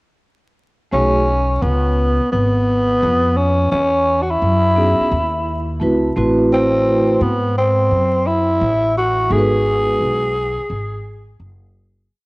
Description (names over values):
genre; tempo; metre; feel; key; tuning
hip hop; 86 BPM; 4/4; swing 66% on 16ths; unclear; A4 = 440 Hz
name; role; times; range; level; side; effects
growling tenor saxophone; melody; 0.9-11.4 s; B3 to G#4; -17 LUFS; equal; cassette tape, analog delay
vibraphone with soft mallets; accompaniment; 0.9-10.3 s; G#3 to B4; -18 LUFS; right 1 dB; cassette tape
upright bass; bass; 0.9-12.1 s; F#1 to G#2; -20 LUFS; equal; none
room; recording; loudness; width
moderate spring reverb, RT60 1.4 s, small room reverb; home recording on cassette, vinyl crackle; -14 LUFS; side -24 dB against mid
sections
0.9-12.1 head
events
fade-out 9.3-12.1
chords
0.9 Bsus2; 3.7 Emaj7sus2; 6.2 Am6; 9.3 G#m7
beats
| 0.93 1.63 2.33 3.03 | 3.72 4.42 5.12 5.82 | 6.51 7.21 7.91 8.61 | 9.30 10.00 10.70 11.40